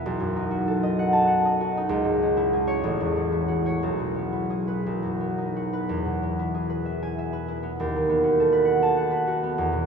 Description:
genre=classical, solo harp piece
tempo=57-68 BPM (dotted quarters)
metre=6/8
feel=rubato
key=unclear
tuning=A4 = 440 Hz
part: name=concert harp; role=solo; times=0.0-9.9 s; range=A1 to A5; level=-22 LUFS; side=equal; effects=none
room=wet cathedral reverb, RT60 5.7 s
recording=small room ambience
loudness=-22 LUFS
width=side -6 dB against mid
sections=0.0-9.9 A section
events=none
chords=0.1 B7; 1.9 C#m; 2.8 F#m7/A; 3.8 E/B; 4.8 B; 5.9 E; 7.8 B7/D#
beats=| 0.07 0.98 | 1.89 2.82 | 3.82 4.84 | 5.88 6.85 | 7.78 8.68 | 9.57

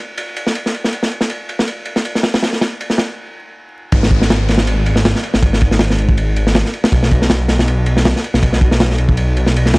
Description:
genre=drum and bass, jungle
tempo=160 BPM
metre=4/4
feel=swing 54% on 16ths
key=G# minor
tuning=A4 = 442 Hz
part: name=crunchy breakbeat drum kit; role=drums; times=0.2-9.8 s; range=kick drum, ride cymbal, snare drum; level=-15 LUFS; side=equal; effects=high-pass filter on kick, high-pass filter on cymbals, high-pass filter on snare, high-pass filter on room
part: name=detuned saw bass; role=bass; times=3.9-9.8 s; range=G#1 to D2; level=-15 LUFS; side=equal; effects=tube saturation
part: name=downlifter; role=sound effects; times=3.9-6.9 s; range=none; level=-29 LUFS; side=equal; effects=none
room=little or no reverb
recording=dry, gritty hardware recording, vinyl crackle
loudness=-13 LUFS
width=side -27 dB against mid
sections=0.0-3.9 A section; 3.9-9.8 B section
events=stop 3.2-3.9; drop 3.9-9.8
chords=none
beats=0.18 0.55 | 0.93 1.30 1.68 2.05 | 2.43 2.80 3.18 3.55 | 3.93 4.30 4.68 5.05 | 5.43 5.80 6.18 6.55 | 6.93 7.30 7.68 8.05 | 8.43 8.80 9.18 9.55

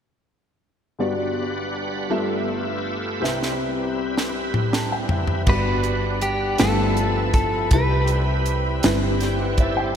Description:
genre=slow gospel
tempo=54 BPM (dotted quarters)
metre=6/8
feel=straight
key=G major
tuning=A4 = 440 Hz
part: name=warm upright piano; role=accompaniment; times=1.0-10.0 s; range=G1 to A5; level=-25 LUFS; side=left 2 dB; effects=analog chorus
part: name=bright tonewheel organ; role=sustained chords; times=1.0-10.0 s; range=F3 to G5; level=-28 LUFS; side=right 2 dB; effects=slow rotary speaker, overdrive, chorus vibrato
part: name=crisp fusion drum kit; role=drums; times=3.2-9.8 s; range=crash cymbal, hi-hat, kick drum, snare drum, toms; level=-23 LUFS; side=equal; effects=none
part: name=clean electric guitar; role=melody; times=5.5-8.8 s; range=G4 to B4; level=-25 LUFS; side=equal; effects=tape echo
part: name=warm symphonic string section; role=sustained chords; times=5.5-9.9 s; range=D5 to B5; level=-35 LUFS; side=left 1 dB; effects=none
part: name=hollow-body short-scale fingered electric bass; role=bass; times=5.5-9.9 s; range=G1 to C2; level=-23 LUFS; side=equal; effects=none
room=wet lush hall reverb, RT60 3.0 s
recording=dreamy mix soaked in reverb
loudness=-20 LUFS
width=side -8 dB against mid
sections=1.0-5.5 A section; 5.5-10.0 B section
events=drum fill 3.2-5.5; upright piano fill 4.4-5.5; tonewheel organ fill 8.8-10.0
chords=1.0 Gmaj7; 2.1 G13; 3.2 Cmaj7; 5.5 Gmaj7; 6.6 G13; 7.7 Cmaj7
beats=| 0.99 2.11 | 3.23 4.35 | 5.47 6.59 | 7.71 8.84 | 9.96

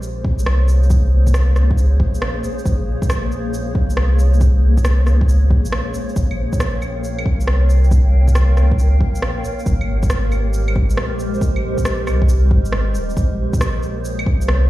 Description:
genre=future garage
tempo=137 BPM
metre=4/4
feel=swing 67% on 16ths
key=Bb dorian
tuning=A4 = 438 Hz
part: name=granular cloud pad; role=sustained chords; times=0.0-14.7 s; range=Ab3 to G5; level=-25 LUFS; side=equal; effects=built-in reverb, sidechain pumping
part: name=soft dub sub bass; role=bass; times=0.0-14.7 s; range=Eb1 to Db2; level=-16 LUFS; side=equal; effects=sidechain pumping
part: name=electronic shaker, rim click and claves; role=drums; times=0.0-14.6 s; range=none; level=-26 LUFS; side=right 1 dB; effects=overdrive
part: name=electronic kick drum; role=drums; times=0.2-14.4 s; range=none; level=-18 LUFS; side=equal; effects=overdrive
room=digital ambience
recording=played on a big sound system in a bare room, large studio reverb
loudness=-14 LUFS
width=side -16 dB against mid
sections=0.0-13.2 A section; 13.2-14.7 B section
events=none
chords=0.0 Bbm9; 6.2 Bbm69; 9.7 Abmaj9; 13.2 Bbm9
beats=0.03 0.47 | 0.91 1.34 1.78 2.22 | 2.66 3.10 3.53 3.97 | 4.41 4.85 5.29 5.72 | 6.16 6.60 7.04 7.47 | 7.91 8.35 8.79 9.23 | 9.66 10.10 10.54 10.98 | 11.42 11.85 12.29 12.73 | 13.17 13.61 14.04 14.48

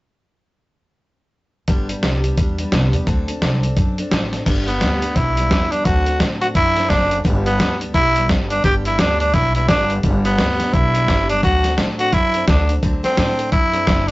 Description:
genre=rockabilly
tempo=172 BPM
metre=4/4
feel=swing 61% on 8ths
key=G major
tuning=A4 = 440 Hz
part: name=picked steel-string acoustic guitar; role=accompaniment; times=1.7-14.1 s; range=G2 to A4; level=-26 LUFS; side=left 1 dB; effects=none
part: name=upright bass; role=bass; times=1.7-14.1 s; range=F#1 to A2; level=-20 LUFS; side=equal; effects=none
part: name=lo-fi sampler-style drum kit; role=drums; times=1.7-14.1 s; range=crash cymbal, hi-hat, kick drum, snare drum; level=-19 LUFS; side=equal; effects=none
part: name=growling tenor saxophone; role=melody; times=4.7-14.1 s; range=B3 to G4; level=-18 LUFS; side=equal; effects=none
room=light reverb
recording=rough rehearsal-room recording, tube saturation, nothing above 7.8 kHz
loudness=-15 LUFS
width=side -19 dB against mid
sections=1.7-4.5 A section; 4.5-14.1 B section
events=none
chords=1.7 G; 3.1 D7; 4.5 G; 5.9 D7; 7.2 G; 11.4 D7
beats=| 1.68 2.03 2.38 2.72 | 3.07 3.42 3.77 4.11 | 4.46 4.81 5.16 5.51 | 5.85 6.20 6.55 6.90 | 7.25 7.59 7.94 8.29 | 8.64 8.99 9.34 9.69 | 10.04 10.38 10.73 11.08 | 11.43 11.78 12.13 12.48 | 12.83 13.18 13.52 13.87

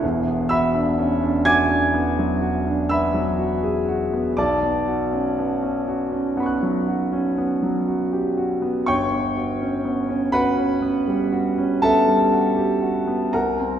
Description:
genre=classical, impressionist solo piano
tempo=40 BPM (dotted quarters)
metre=9/8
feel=rubato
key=unclear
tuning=A4 = 440 Hz
part: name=warm grand piano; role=solo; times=0.0-13.8 s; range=E1 to G#6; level=-19 LUFS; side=equal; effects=none
room=wet concert hall reverb, RT60 1.9 s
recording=heard from further back in the room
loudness=-19 LUFS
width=side -9 dB against mid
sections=0.0-13.8 A section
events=none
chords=0.0 E9; 4.4 Bmadd9; 8.9 Gmaj7#11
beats=| 0.03 1.45 2.90 | 4.38 5.87 7.37 | 8.88 10.34 11.82 | 13.34

